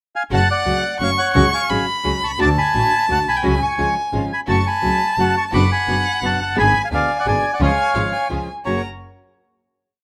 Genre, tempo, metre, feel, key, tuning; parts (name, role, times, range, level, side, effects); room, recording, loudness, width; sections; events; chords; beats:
tango; 173 BPM; 3/4; rubato; F# harmonic minor; A4 = 441 Hz
bandoneon; melody; 0.2-8.8 s; C#5 to D6; -22 LUFS; equal
dark violin; second line; 0.3-8.8 s; E#5 to C#6; -24 LUFS; equal; plate reverb
nylon-string guitar; accompaniment; 0.3-8.8 s; F#2 to G#4; -26 LUFS; equal
bright chamber string section; stabs; 0.3-8.8 s; G#3 to A#4; -32 LUFS; equal
rich double bass; bass; 0.3-8.8 s; F#1 to D2; -24 LUFS; equal
light reverb; rough home demo mix; -18 LUFS; mono
0.0-0.3 pickup bar; 0.3-8.7 variation; 8.7-9.7 final chord
0.3 F#m; 1.3 C#sus4; 2.4 D; 3.4 C#sus4; 3.8 C#; 4.5 F#m; 5.5 Bm/F#; 6.6 G#dim; 7.6 C#; 8.7 F#
| 0.30 0.65 1.00 | 1.35 1.70 2.04 | 2.39 2.74 3.09 | 3.44 3.78 4.13 | 4.48 4.83 5.18 | 5.53 5.88 6.22 | 6.57 6.92 7.26 | 7.61 7.96 8.31 | 8.65